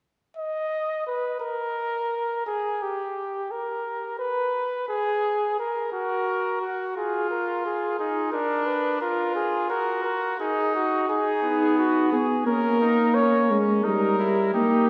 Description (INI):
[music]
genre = classical, imitative canzona for brass ensemble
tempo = 87 BPM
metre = 4/4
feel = straight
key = G# minor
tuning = A4 = 441 Hz
[part]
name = mellow trumpet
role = melody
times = 0.4-14.9 s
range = F#4 to D#5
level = -28 LUFS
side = equal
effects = none
[part]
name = clear trumpet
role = second line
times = 5.9-14.9 s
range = B3 to A#4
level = -30 LUFS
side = equal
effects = none
[part]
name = dark euphonium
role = accompaniment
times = 11.4-14.9 s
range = G3 to D#4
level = -24 LUFS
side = equal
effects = none
[sound]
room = wet church reverb, RT60 2.9 s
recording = heard from further back in the room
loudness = -25 LUFS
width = mono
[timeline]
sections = 0.0-14.9 A section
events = none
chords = 0.0 N.C.; 5.6 F#; 7.0 D#sus24; 8.3 A#/D; 9.7 D#m/F#; 11.1 G#m; 12.5 G#sus24; 13.8 D#/G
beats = | 0.02 0.72 1.42 2.11 | 2.81 3.51 4.20 4.89 | 5.59 6.28 6.97 7.65 | 8.34 9.02 9.71 10.40 | 11.09 11.77 12.46 13.15 | 13.85 14.54